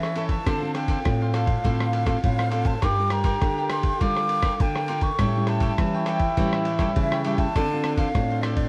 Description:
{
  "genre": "samba and choro",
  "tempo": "102 BPM",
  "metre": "4/4",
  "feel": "straight",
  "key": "D minor",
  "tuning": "A4 = 445 Hz",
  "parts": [
    { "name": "breathy mellow silver concert flute", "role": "melody", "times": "0.0-8.7 s", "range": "D5 to D6", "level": "-31 LUFS", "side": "equal", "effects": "plate reverb" },
    { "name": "clear trombone", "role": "second line", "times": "0.0-8.7 s", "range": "D4 to A4", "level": "-33 LUFS", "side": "equal", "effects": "none" },
    { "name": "cavaquinho", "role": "accompaniment", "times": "0.0-8.7 s", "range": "D4 to G5", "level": "-36 LUFS", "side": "equal", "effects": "none" },
    { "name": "nylon-string guitar", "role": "accompaniment", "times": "0.0-8.7 s", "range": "A2 to Bb4", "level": "-32 LUFS", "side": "equal", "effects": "none" },
    { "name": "nylon-string guitar", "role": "bass", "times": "0.0-8.7 s", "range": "G2 to E3", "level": "-29 LUFS", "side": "equal", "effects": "none" },
    { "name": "lo-fi sampler-style drum kit", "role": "drums", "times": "0.0-8.7 s", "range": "kick drum, ride cymbal, rim click", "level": "-29 LUFS", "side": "equal", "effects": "none" }
  ],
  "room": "moderate studio ambience, RT60 0.5 s",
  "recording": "dark, warm production",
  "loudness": "-23 LUFS",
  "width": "mono",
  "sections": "0.0-8.7 A section",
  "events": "none",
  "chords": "0.5 Dm7; 2.8 Gm7; 5.2 A7; 7.6 Dm7"
}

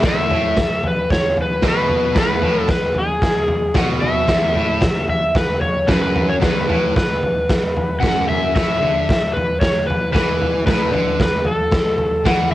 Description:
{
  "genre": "garage rock duo or trio",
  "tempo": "113 BPM",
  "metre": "4/4",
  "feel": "straight",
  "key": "E mixolydian",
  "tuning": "A4 = 440 Hz",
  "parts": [
    { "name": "overdriven slide guitar", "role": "melody", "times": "0.0-12.5 s", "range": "G#4 to F#5", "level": "-19 LUFS", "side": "left 1 dB", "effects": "cassette tape" },
    { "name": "fuzz guitar", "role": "riff", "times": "0.0-12.5 s", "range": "E2 to E3", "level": "-22 LUFS", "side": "equal", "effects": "distortion, cassette tape" },
    { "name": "raw garage drum kit", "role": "drums", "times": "0.0-12.5 s", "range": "kick drum, snare drum, toms", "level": "-18 LUFS", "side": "equal", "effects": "cassette tape" }
  ],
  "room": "light reverb, small room ambience",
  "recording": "home recording on cassette",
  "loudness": "-15 LUFS",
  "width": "side -15 dB against mid",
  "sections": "0.0-12.5 A section",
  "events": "none",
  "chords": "0.0 E5; 8.5 A5"
}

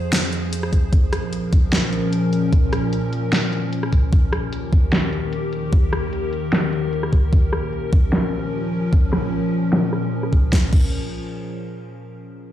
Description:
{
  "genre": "heavy wobble dubstep",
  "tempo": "150 BPM",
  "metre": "4/4",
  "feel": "half-time",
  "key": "F minor",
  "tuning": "A4 = 440 Hz",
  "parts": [
    { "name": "evolving wavetable pad", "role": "sustained chords", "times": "0.0-10.7 s", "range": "Eb2 to C5", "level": "-23 LUFS", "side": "left 1 dB", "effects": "chorus, built-in reverb, sidechain pumping" },
    { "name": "dubstep drum kit", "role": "drums", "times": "0.1-10.8 s", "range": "crash cymbal, hi-hat, rim click, snare drum", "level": "-23 LUFS", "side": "equal", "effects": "overdrive, low-pass filter on hats, small room ambience, low-pass filter on snare, low-pass filter on cymbals" },
    { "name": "electronic kick drum", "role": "drums", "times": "0.7-10.8 s", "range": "none", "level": "-15 LUFS", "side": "equal", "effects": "overdrive, small room ambience" }
  ],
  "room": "light reverb",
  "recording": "played on a big sound system in a bare room, stone room reverb",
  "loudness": "-17 LUFS",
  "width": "side -12 dB against mid",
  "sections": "0.0-10.5 A section; 10.5-12.1 B section",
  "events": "filter sweep on drum 0.0-10.5",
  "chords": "0.0 Fm; 0.9 Bbm; 4.1 Eb; 7.3 Bbm; 10.5 Fm"
}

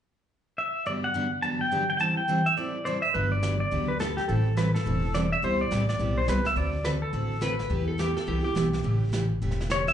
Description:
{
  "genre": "country, western swing",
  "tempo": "210 BPM",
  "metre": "4/4",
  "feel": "swing 61% on 8ths",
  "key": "G major",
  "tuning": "A4 = 440 Hz",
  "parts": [
    { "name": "pedal steel guitar", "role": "melody", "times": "0.6-7.6, 9.7-9.9 s", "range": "G4 to A5", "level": "-27 LUFS", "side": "left 1 dB", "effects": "slapback echo" },
    { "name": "picked steel-string acoustic guitar", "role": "accompaniment", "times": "0.9-9.8 s", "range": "G2 to A4", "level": "-30 LUFS", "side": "right 2 dB", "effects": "slapback echo" },
    { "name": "upright bass", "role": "bass", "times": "3.1-9.9 s", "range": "E1 to E2", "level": "-28 LUFS", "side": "equal", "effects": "none" },
    { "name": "vintage brush drum kit", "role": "drums", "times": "3.1-9.9 s", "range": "brushed snare drum, hi-hat, snare drum", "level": "-37 LUFS", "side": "right 1 dB", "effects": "slapback echo" },
    { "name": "clean lap steel guitar", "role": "second line", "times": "7.4-9.3 s", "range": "G4 to B4", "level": "-31 LUFS", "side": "equal", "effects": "slapback echo" }
  ],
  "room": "light reverb",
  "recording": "live gig heard through the venue's PA, club reverb, nothing above 10.4 kHz",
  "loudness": "-24 LUFS",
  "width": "side -9 dB against mid",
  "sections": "0.9-3.1 A section; 3.1-9.9 B section",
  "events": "none",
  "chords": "0.0 N.C.; 0.9 Gmaj7; 2.0 Am7; 3.1 Gmaj7; 4.3 Am7; 5.4 Cmaj7; 6.6 D7; 7.7 Em; 8.8 A7"
}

